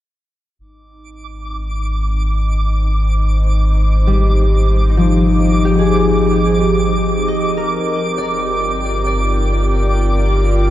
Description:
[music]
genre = ambient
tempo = 67 BPM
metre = 4/4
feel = straight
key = Ab lydian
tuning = A4 = 438 Hz
[part]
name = airy breathy pad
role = sustained chords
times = 0.6-10.7 s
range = Eb4 to G5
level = -26 LUFS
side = equal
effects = chorus, shimmer reverb
[part]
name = round analog bass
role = bass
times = 0.6-10.7 s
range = G1 to Ab1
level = -16 LUFS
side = equal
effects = none
[part]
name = organ-like drone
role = drone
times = 1.5-10.7 s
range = C4 to Eb4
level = -32 LUFS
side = left 1 dB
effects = ensemble chorus, built-in reverb
[part]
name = twinkling granular texture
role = texture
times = 1.3-10.7 s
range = D6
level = -24 LUFS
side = right 1 dB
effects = built-in reverb, shimmer reverb
[part]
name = concert harp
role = arpeggios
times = 4.1-10.7 s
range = F3 to Eb5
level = -16 LUFS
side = left 1 dB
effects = diffuse ambient delay, shimmer reverb
[sound]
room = moderate huge ambient reverb, RT60 7.3 s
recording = dark, warm production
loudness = -13 LUFS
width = side -13 dB against mid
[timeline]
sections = 0.6-10.7 A section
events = fade-in on analog synth pad 0.6-10.7; fade-in on synth drone 0.6-10.7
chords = 0.6 Ab; 7.8 Gm7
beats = | 0.59 1.51 2.42 3.33 | 4.23 5.14 6.04 6.93 | 7.83 8.72 9.61 10.50

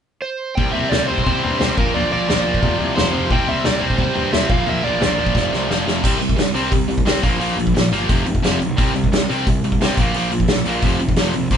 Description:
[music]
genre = punk rock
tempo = 176 BPM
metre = 4/4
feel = straight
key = unclear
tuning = A4 = 440 Hz
[part]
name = overdriven semi-hollow guitar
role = melody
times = 0.2-5.9 s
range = Bb4 to G5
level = -23 LUFS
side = right 4 dB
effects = none
[part]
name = distorted electric guitar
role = riff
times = 0.6-11.6 s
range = F2 to C4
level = -20 LUFS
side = equal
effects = overdrive
[part]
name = fuzz picked electric bass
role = bass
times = 0.6-11.6 s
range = F1 to G2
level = -26 LUFS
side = equal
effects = overdrive
[part]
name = loose indie drum kit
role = drums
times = 0.6-11.6 s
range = crash cymbal, hi-hat, kick drum, snare drum, toms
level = -19 LUFS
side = equal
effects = none
[sound]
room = light reverb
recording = band playing live in one room, nothing above 11.0 kHz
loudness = -16 LUFS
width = side -8 dB against mid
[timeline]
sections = 0.6-6.0 A section; 6.0-11.6 B section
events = drum fill 5.4-6.0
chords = 0.0 N.C.; 0.6 C5; 1.8 Bb; 2.6 F5; 3.3 C5; 4.5 Bb; 5.4 F5; 6.0 C5; 7.2 Bb5; 8.1 F5; 8.8 C5; 10.0 Bb5; 10.8 F5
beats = 0.23 | 0.58 0.92 1.26 1.60 | 1.94 2.29 2.63 2.97 | 3.31 3.65 3.99 4.33 | 4.68 5.02 5.36 5.70 | 6.04 6.38 6.72 7.07 | 7.41 7.75 8.09 8.43 | 8.77 9.11 9.46 9.80 | 10.14 10.48 10.82 11.16 | 11.50

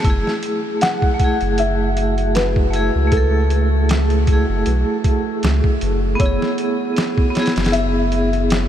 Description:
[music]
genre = trip hop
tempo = 78 BPM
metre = 4/4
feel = swing 55% on 16ths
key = F# minor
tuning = A4 = 440 Hz
[part]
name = vibraphone with hard mallets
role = accompaniment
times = 0.0-8.7 s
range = A3 to A4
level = -20 LUFS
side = right 1 dB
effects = tremolo, tape echo
[part]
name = warm sub bass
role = bass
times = 0.0-8.7 s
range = F#1 to C#2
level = -18 LUFS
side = equal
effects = tube saturation
[part]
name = boom bap sampler-style drum kit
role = drums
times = 0.0-8.7 s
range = hi-hat, kick drum, snare drum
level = -21 LUFS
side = equal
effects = none
[part]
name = bowed-like drone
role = texture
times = 2.0-8.7 s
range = A3 to F#4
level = -29 LUFS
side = left 1 dB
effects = built-in reverb
[part]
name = felt-muted upright piano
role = melody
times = 0.8-8.7 s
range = A4 to F#5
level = -24 LUFS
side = left 1 dB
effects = tape echo
[sound]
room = moderate huge ambient reverb, RT60 7.2 s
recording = dreamy mix soaked in reverb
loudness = -15 LUFS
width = side -10 dB against mid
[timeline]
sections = 0.0-8.7 A section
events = none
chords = 0.0 F#m7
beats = | 0.04 0.81 1.58 2.35 | 3.12 3.89 4.66 5.43 | 6.20 6.97 7.74 8.51

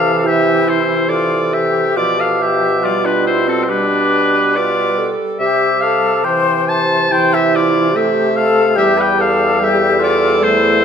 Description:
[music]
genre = classical, slow romantic movement for wind quintet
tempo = 68-74 BPM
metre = 4/4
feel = rubato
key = C major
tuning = A4 = 439 Hz
[part]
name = bright concert flute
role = melody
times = 0.0-10.8 s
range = C4 to C5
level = -19 LUFS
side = left 6 dB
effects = none
[part]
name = clear oboe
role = second line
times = 0.0-10.8 s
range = A4 to A5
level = -16 LUFS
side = left 3 dB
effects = none
[part]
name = clear French horn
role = accompaniment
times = 0.0-10.8 s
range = E3 to A3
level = -22 LUFS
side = right 1 dB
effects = none
[part]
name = mellow clarinet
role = accompaniment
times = 0.0-10.8 s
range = E4 to B4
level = -19 LUFS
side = right 5 dB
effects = none
[part]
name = mellow bassoon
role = bass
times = 0.0-10.8 s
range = E2 to C3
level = -20 LUFS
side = right 2 dB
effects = none
[sound]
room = moderate recital hall reverb, RT60 1.4 s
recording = none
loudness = -12 LUFS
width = side -7 dB against mid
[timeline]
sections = 0.0-10.8 A section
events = none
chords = 0.0 C; 2.0 G7/B; 5.4 C; 8.8 C/E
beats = 0.25 1.10 | 1.96 2.83 3.69 4.56 | 5.40 6.25 7.12 7.95 | 8.78 9.62 10.43

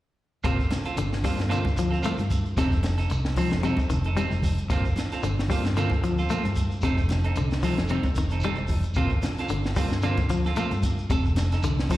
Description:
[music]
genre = afrobeat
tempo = 113 BPM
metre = 4/4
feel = swing 55% on 16ths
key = G minor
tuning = A4 = 441 Hz
[part]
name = semi-hollow electric guitar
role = stabs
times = 0.4-12.0 s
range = A3 to A4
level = -30 LUFS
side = right 4 dB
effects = spring reverb, slapback echo
[part]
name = fingered electric bass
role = bass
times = 0.4-11.9 s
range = F1 to G2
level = -26 LUFS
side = equal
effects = none
[part]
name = compact cocktail drum kit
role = drums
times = 0.4-12.0 s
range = hi-hat, kick drum, snare drum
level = -28 LUFS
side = equal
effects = none
[part]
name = shekere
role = percussion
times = 0.4-12.0 s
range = none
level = -37 LUFS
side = right 1 dB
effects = none
[part]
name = semi-hollow electric guitar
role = arpeggios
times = 0.5-12.0 s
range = C3 to A3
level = -29 LUFS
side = left 4 dB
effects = slapback echo
[part]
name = congas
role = percussion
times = 0.7-12.0 s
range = none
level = -35 LUFS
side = equal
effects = slapback echo
[sound]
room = light reverb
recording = live gig heard through the venue's PA, recital hall reverb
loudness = -23 LUFS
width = side -15 dB against mid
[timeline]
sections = 0.5-12.0 A section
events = none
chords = 0.5 Gm11; 2.6 F7; 4.7 Gm11; 6.8 F7; 9.0 Gm11; 11.1 F7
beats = | 0.45 0.98 1.51 2.05 | 2.58 3.11 3.64 4.17 | 4.70 5.24 5.77 6.30 | 6.83 7.37 7.90 8.44 | 8.97 9.50 10.04 10.57 | 11.11 11.64

